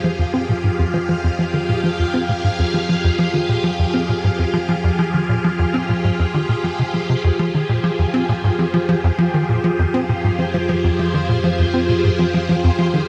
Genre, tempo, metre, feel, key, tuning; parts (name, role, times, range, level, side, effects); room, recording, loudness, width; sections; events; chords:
ambient, sequencer-driven space music; 100 BPM; 4/4; straight; F minor; A4 = 440 Hz
phased string machine; sustained chords; 0.0-13.1 s; F3 to F5; -23 LUFS; equal; ensemble chorus, phaser
tight sequencer bass; riff; 0.0-13.0 s; F2 to C4; -20 LUFS; equal; lush chorus, cassette tape, delay
analog drone; bass; 0.0-13.1 s; F2; -33 LUFS; equal
moderate huge ambient reverb, RT60 8.4 s; -18 LUFS; mono
0.0-13.1 A section
filter sweep on analog synth bass 0.0-13.1
0.0 Fmadd9